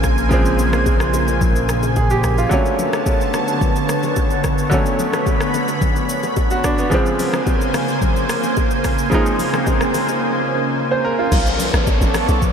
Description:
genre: amapiano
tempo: 109 BPM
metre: 4/4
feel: straight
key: unclear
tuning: A4 = 438 Hz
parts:
  - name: bright grand piano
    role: accompaniment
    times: 0.0-11.4 s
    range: C#3 to B#4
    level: -21 LUFS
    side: right 1 dB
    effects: none
  - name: lush unison pad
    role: sustained chords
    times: 0.0-12.5 s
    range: C#3 to B5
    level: -20 LUFS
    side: equal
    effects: chorus, phaser, sidechain pumping
  - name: fat analog bass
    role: bass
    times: 0.0-2.5 s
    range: A#1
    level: -20 LUFS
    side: equal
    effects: none
  - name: afro-pop drum kit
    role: drums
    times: 0.0-12.5 s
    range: crash cymbal, hi-hat, kick drum, rim click, shaker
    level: -21 LUFS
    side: equal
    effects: none
  - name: congas and bongos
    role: percussion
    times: 0.3-12.5 s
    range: none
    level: -30 LUFS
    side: left 7 dB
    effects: none
  - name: swell and downlifter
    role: sound effects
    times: 8.9-12.5 s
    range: none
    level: -27 LUFS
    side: right 1 dB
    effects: none
  - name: hollow log drum bass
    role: bass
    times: 11.3-12.5 s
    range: A1 to B1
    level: -18 LUFS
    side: equal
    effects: none
room: wet huge ambient reverb, RT60 8.6 s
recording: dreamy mix soaked in reverb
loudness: -15 LUFS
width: side -7 dB against mid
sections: 0.0-11.3 A section; 11.3-12.5 B section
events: drop 11.3-12.5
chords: 0.0 A#m9; 2.5 Bm9; 6.9 A#m9; 11.3 Bm9

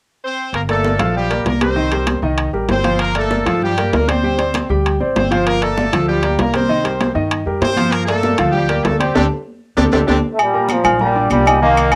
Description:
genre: latin, salsa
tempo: 195 BPM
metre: 4/4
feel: straight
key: G minor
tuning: A4 = 440 Hz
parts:
  - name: brilliant horn section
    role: melody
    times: 0.2-10.2 s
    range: G3 to C5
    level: -22 LUFS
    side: equal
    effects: cassette tape
  - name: upright bass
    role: bass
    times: 0.5-12.0 s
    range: G1 to G2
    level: -24 LUFS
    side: equal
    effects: none
  - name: congas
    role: percussion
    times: 0.5-12.0 s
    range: none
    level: -25 LUFS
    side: equal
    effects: none
  - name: timbales and agogo bells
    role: percussion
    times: 0.5-12.0 s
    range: none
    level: -22 LUFS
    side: equal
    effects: none
  - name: clear grand piano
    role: accompaniment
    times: 0.7-12.0 s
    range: Eb3 to F6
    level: -22 LUFS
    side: equal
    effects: none
  - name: bright trombone section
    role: melody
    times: 10.3-12.0 s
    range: Bb2 to Bb3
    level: -18 LUFS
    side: equal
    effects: cassette tape
room: moderate small room reverb, RT60 0.5 s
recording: home recording on cassette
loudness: -16 LUFS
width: mono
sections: 0.5-10.4 A section; 10.4-12.0 B section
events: band accent 9.2-10.4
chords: 0.0 N.C.; 0.5 Gm7; 1.8 Cm7; 3.0 Gm7; 4.2 D7sus4; 5.5 Gm7; 6.7 Cm7; 7.9 Gm7; 9.2 Dsus4; 10.4 Gm7

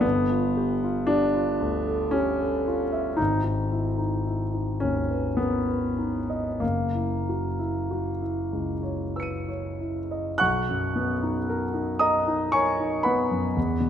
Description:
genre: classical, impressionist solo piano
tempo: 46-59 BPM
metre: 3/4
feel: rubato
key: B major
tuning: A4 = 439 Hz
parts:
  - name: warm concert grand piano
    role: solo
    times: 0.0-13.9 s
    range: F#1 to D#7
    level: -23 LUFS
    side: equal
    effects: none
room: moderate concert hall reverb, RT60 1.8 s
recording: minimal, uncompressed stereo recording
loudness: -23 LUFS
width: side -9 dB against mid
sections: 0.0-10.4 A section; 10.4-13.9 B section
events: none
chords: 0.0 G9; 3.2 G#madd9; 6.6 F#6; 10.4 Bmaj9

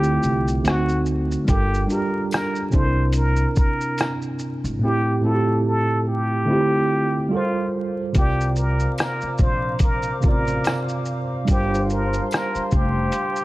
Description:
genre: lo-fi hip hop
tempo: 72 BPM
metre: 4/4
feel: swing 56% on 16ths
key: unclear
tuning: A4 = 440 Hz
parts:
  - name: trumpet with plunger mute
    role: melody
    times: 0.0-13.4 s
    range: F4 to C5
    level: -26 LUFS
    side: equal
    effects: low-pass filter, analog delay
  - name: mellow tine electric piano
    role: accompaniment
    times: 0.0-13.4 s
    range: A2 to D5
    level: -22 LUFS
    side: right 1 dB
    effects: medium stereo tremolo, cassette tape, low-pass filter
  - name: upright bass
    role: bass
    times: 0.0-13.1 s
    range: F1 to D2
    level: -24 LUFS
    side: equal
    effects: none
  - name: lo-fi sampler-style drum kit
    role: drums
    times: 0.0-13.4 s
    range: hi-hat, kick drum, rim click, shaker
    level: -22 LUFS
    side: equal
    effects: vintage 12-bit sampler grit
  - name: tambourine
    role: percussion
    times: 2.3-12.5 s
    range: none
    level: -44 LUFS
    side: left 3 dB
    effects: none
  - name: mellow large flute ensemble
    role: sustained chords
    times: 8.2-13.4 s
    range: C5 to D6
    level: -31 LUFS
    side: left 1 dB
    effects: low-pass filter
room: light reverb, studio ambience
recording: vinyl crackle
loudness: -19 LUFS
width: side -18 dB against mid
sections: 0.0-8.1 A section; 8.1-13.4 B section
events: none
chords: 0.0 Dm11; 0.6 D7b9; 1.5 Gm9; 2.7 C7; 4.8 Am7; 6.5 Dm11; 7.3 Gm11; 8.1 C9sus4; 11.5 Gm11

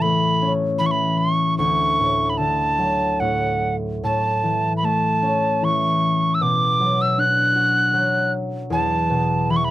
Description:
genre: celtic folk, Celtic slow air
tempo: 70-79 BPM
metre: 3/4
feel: rubato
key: unclear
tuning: A4 = 439 Hz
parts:
  - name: mellow tin whistle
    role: melody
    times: 0.0-9.7 s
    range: F#5 to F#6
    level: -19 LUFS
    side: right 1 dB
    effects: none
  - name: concert harp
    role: accompaniment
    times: 0.0-9.7 s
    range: D2 to F#4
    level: -21 LUFS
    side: left 1 dB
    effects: none
room: light reverb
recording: dry, close 1970s-style studio recording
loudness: -17 LUFS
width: side -14 dB against mid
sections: 0.0-9.7 A section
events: none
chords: 0.0 Aadd9; 1.6 D; 4.0 A; 6.4 Bm; 8.7 Esus4

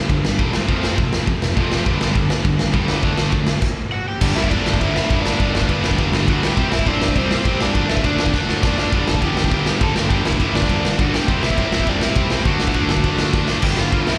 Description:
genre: punk rock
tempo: 204 BPM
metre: 4/4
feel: straight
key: G major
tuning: A4 = 440 Hz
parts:
  - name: high-gain distorted guitar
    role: riff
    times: 0.0-14.2 s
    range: F2 to E4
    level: -30 LUFS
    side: equal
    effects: none
  - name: fuzz picked electric bass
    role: bass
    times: 0.0-14.2 s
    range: E1 to A2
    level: -26 LUFS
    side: equal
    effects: overdrive
  - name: tight distorted guitar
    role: riff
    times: 0.1-14.2 s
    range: F2 to D4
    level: -28 LUFS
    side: equal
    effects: distortion
  - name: tight distorted guitar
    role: riff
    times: 0.1-14.2 s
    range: F2 to D4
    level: -27 LUFS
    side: equal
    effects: distortion
  - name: raw garage drum kit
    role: drums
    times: 0.1-14.1 s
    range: crash cymbal, kick drum, ride cymbal, snare drum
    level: -22 LUFS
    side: equal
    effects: none
  - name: overdriven semi-hollow guitar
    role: melody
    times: 3.9-14.2 s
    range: B3 to A5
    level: -28 LUFS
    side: equal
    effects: slapback echo
room: little or no reverb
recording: live gig heard through the venue's PA, recital hall reverb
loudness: -18 LUFS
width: mono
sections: 0.0-4.2 A section; 4.2-13.6 B section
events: stop 3.6-4.2; drum fill 8.3-8.9, 13.3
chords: 0.0 G; 0.5 F; 1.9 G; 3.0 D; 4.2 G; 6.6 C; 7.8 D; 8.9 G; 11.3 C; 12.5 D; 13.6 G

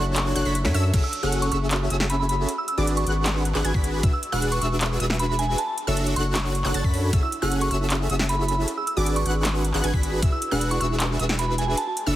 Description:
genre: future bass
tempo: 155 BPM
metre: 4/4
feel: half-time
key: F# minor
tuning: A4 = 440 Hz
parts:
  - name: soft synth bell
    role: melody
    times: 0.0-11.9 s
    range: G#5 to E6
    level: -29 LUFS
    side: right 2 dB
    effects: chorus, sidechain pumping, digital delay
  - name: barky tine electric piano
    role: accompaniment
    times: 0.0-1.0 s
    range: F#3 to E5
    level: -35 LUFS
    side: equal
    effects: sidechain pumping, digital delay
  - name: wide unison pluck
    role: arpeggios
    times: 0.0-12.2 s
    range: D6 to B6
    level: -34 LUFS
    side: equal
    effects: sidechain pumping
  - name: supersaw chords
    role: riff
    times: 0.0-12.2 s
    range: C#4 to B5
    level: -27 LUFS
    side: right 1 dB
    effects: sidechain pumping
  - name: saturated sub bass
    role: bass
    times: 0.0-12.2 s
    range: E1 to F#2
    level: -25 LUFS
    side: equal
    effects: sidechain pumping
  - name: big-room dance drum kit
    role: drums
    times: 0.2-12.0 s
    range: crash cymbal, handclaps, hi-hat, snare drum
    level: -29 LUFS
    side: equal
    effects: studio reverb
  - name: electronic kick drum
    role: drums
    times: 0.9-1.0, 3.7-4.1, 6.8-7.2, 9.9-10.3 s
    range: none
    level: -22 LUFS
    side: equal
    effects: studio reverb
  - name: soft round pluck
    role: arpeggios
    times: 7.2-12.2 s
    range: E4 to G#4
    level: -35 LUFS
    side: right 5 dB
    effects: chorus, sidechain pumping, digital delay
room: light reverb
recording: heavily compressed radio sound, multiband compression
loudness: -21 LUFS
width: side -14 dB against mid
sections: 0.9-12.2 A section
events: kick drops out 0.5-0.9; drop 0.9-12.2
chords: 0.0 Dmaj7/F#; 0.9 F#m9; 2.5 G#m7b5; 4.0 E9; 5.6 Dmaj7/F#; 7.1 F#m9; 8.7 G#m7b5; 10.2 E9

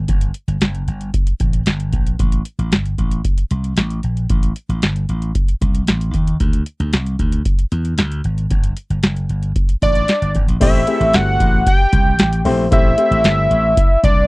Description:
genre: early-eighties boogie funk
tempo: 114 BPM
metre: 4/4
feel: straight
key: A dorian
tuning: A4 = 441 Hz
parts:
  - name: slap bass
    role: bass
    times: 0.0-14.3 s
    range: F#1 to E2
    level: -18 LUFS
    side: equal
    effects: none
  - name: booming analog drum machine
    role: drums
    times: 0.1-14.2 s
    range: crash cymbal, hi-hat, kick drum, snare drum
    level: -16 LUFS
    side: equal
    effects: none
  - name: fat analog lead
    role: melody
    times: 9.8-14.3 s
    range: D5 to G5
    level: -16 LUFS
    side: equal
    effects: chorus
  - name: warm baby grand piano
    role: accompaniment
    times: 10.6-13.7 s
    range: A3 to C5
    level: -20 LUFS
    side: left 3 dB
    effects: none
room: little or no reverb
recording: dry, close 1970s-style studio recording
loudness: -14 LUFS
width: side -22 dB against mid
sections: 0.0-10.6 A section; 10.6-14.3 B section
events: none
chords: 0.1 N.C.; 8.5 G5; 10.6 Am7

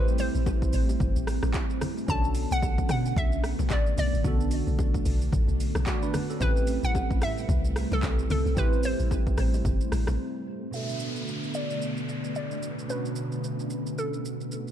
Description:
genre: amapiano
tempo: 111 BPM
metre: 4/4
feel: swing 58% on 16ths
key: B phrygian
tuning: A4 = 439 Hz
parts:
  - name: hollow square pluck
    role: melody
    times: 0.0-14.7 s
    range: A4 to A5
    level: -34 LUFS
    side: equal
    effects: chorus, low-pass filter, digital delay
  - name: bell-like tine electric piano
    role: accompaniment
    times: 0.0-14.7 s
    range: B2 to D5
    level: -35 LUFS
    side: right 5 dB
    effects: phaser, low-pass filter
  - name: string machine, cellos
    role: sustained chords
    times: 0.0-14.7 s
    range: B2 to B4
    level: -33 LUFS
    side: left 1 dB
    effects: ensemble chorus, sidechain pumping, low-pass filter
  - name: deep log drum bass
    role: bass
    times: 0.0-10.2 s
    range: G1 to B2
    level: -27 LUFS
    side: equal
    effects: none
  - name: deep house drum kit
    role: drums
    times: 0.1-14.7 s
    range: handclaps, hi-hat, kick drum, rim click, shaker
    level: -30 LUFS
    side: equal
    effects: overdrive
  - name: bongos and congas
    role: percussion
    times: 0.2-10.2 s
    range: none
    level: -36 LUFS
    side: left 2 dB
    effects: none
  - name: downlifter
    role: sound effects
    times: 10.7-14.7 s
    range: none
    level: -40 LUFS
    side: equal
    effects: none
room: digital ambience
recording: dark, warm production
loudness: -25 LUFS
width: side -10 dB against mid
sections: 0.0-10.7 A section; 10.7-14.7 B section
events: drop 0.0-10.7; break 10.2-10.7; filter sweep 10.7-14.7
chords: 0.0 Am9; 2.1 Bm9; 6.4 Am9; 10.7 Bm9

